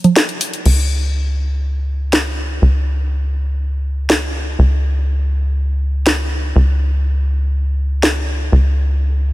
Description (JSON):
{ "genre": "melodic techno", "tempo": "122 BPM", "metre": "4/4", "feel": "straight", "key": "unclear", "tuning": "A4 = 441 Hz", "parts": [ { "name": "house drum kit", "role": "drums", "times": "0.0-8.1 s", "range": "congas, crash cymbal, hi-hat, snare drum", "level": "-17 LUFS", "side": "right 1 dB", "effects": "overdrive" }, { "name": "tight sequencer bass", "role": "bass", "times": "0.7-9.3 s", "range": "C#2", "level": "-15 LUFS", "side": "equal", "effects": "none" } ], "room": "little or no reverb", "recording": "none", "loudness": "-15 LUFS", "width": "side -18 dB against mid", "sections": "0.7-9.3 A section", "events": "break 0.0-0.7", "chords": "none", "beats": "0.16 | 0.66 1.15 1.64 2.13 | 2.62 3.11 3.61 4.10 | 4.59 5.08 5.57 6.07 | 6.56 7.05 7.54 8.03 | 8.52 9.02" }